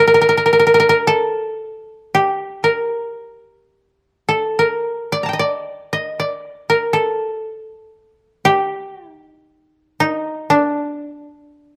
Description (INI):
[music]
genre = japanese traditional, Japanese chamber music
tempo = 57 BPM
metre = 2/4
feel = rubato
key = D miyako bushi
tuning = A4 = 439 Hz
[part]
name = koto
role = solo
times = 0.0-11.8 s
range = D4 to Bb5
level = -17 LUFS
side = equal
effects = none
[sound]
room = moderate spring reverb, RT60 1.1 s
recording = none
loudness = -18 LUFS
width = mono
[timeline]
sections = 0.0-11.8 A section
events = none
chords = none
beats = 1.04 | 2.08 3.15 | 4.24 5.33 | 6.39 7.43 | 8.46 9.48 | 10.51 11.57